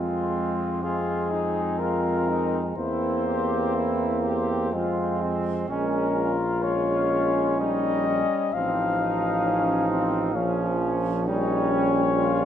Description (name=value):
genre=classical, hymn-like piece for brass band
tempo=60-67 BPM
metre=3/4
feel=rubato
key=F minor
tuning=A4 = 440 Hz
part: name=dark cornet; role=melody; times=0.0-12.4 s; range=F4 to F5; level=-28 LUFS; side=left 6 dB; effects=none
part: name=mellow flugelhorn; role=second line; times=0.0-12.4 s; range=C4 to Eb4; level=-30 LUFS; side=right 5 dB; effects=none
part: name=bright trombone section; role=accompaniment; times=0.0-12.4 s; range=Ab3 to G4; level=-31 LUFS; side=left 2 dB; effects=none
part: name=clear euphonium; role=accompaniment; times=0.0-12.4 s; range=F3 to Bb3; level=-29 LUFS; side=right 3 dB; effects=none
part: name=warm tuba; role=bass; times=0.0-12.4 s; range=A1 to F2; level=-29 LUFS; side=equal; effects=none
room=moderate scoring stage reverb, RT60 1.8 s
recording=nothing above 10.8 kHz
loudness=-22 LUFS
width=side -9 dB against mid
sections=0.0-12.4 A section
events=none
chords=0.0 Fm; 2.8 C7/E; 4.7 Fm; 5.7 Bbm7; 8.5 F7/A; 10.3 Bbm; 11.3 Gdim/Bb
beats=0.84 1.79 | 2.77 3.74 4.72 | 5.68 6.63 7.60 | 8.54 9.45 10.35 | 11.26 12.16